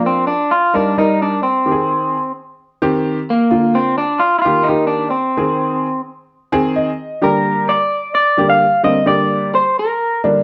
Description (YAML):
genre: soul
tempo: 129 BPM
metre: 4/4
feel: straight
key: unclear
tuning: A4 = 439 Hz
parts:
  - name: electric guitar through a small old amp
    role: melody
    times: 0.0-10.2 s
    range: Bb3 to F5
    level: -17 LUFS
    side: equal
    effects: slapback echo
  - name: warm upright piano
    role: accompaniment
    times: 0.0-10.4 s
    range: D3 to Ab5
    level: -20 LUFS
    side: equal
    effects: none
room: wet spring reverb, RT60 1.1 s, studio ambience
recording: none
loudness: -16 LUFS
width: mono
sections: 0.0-7.2 A section; 7.2-10.4 B section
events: upright piano fill 6.3-7.2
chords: 0.0 Bb; 0.7 Eb; 1.7 Ab; 3.5 Bb; 4.4 Eb; 5.4 Ab; 7.2 Gm